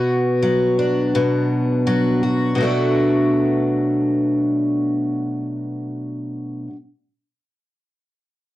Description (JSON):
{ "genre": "pop", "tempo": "83 BPM", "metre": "4/4", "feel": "swing 60% on 16ths", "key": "B minor", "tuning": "A4 = 440 Hz", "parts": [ { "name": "picked twelve-string acoustic guitar", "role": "accompaniment", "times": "0.0-6.8 s", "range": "B2 to F#4", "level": "-17 LUFS", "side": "equal", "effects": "none" } ], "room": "moderate small room reverb, RT60 0.6 s", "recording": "cassette tape", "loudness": "-17 LUFS", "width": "side -15 dB against mid", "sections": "0.0-2.6 A section; 2.6-5.5 B section", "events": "none", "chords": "0.0 Bm; 2.6 Bm7" }